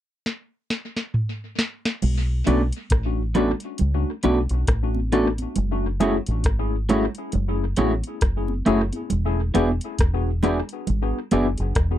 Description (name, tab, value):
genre	lovers rock reggae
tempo	68 BPM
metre	4/4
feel	swing 60% on 16ths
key	B dorian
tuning	A4 = 440 Hz
part	soft vintage rhythm box	drums	0.3-12.0 s	crash cymbal, hi-hat, kick drum, rim click, snare drum, toms	-25 LUFS	equal	tape echo
part	deep dub fingered electric bass	bass	2.0-12.0 s	E1 to C#2	-23 LUFS	equal	none
part	congas	percussion	2.0-11.6 s	none	-31 LUFS	right 5 dB	none
part	tine electric piano	accompaniment	2.5-11.7 s	A3 to G#4	-26 LUFS	left 4 dB	medium stereo tremolo, tape echo
part	electric guitar through a small old amp	stabs	2.5-11.5 s	A3 to D5	-21 LUFS	right 3 dB	none
room	little or no reverb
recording	dry, close 1970s-style studio recording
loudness	-20 LUFS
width	side -12 dB against mid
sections	0.0-2.0 A section; 2.0-12.0 B section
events	drum fill 0.3-2.0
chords	0.0 N.C.; 2.0 Bm7; 5.6 F#m7; 9.1 E7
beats	0.26 1.14 | 2.02 2.91 3.79 4.68 | 5.56 6.45 7.33 8.22 | 9.10 9.98 10.87 11.75